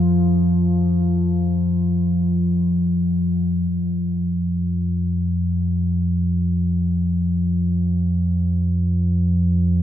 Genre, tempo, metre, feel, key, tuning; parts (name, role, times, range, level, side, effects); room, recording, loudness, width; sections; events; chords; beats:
ambient; free time; A4 = 440 Hz
deep rumbling drone; solo; 0.0-9.8 s; F2 to F3; -17 LUFS; equal; built-in reverb, diffuse ambient delay
wet cathedral reverb, RT60 5.9 s; in a vast, echoing space; -18 LUFS; side -11 dB against mid
0.0-3.7 A section; 3.7-9.8 B section
free time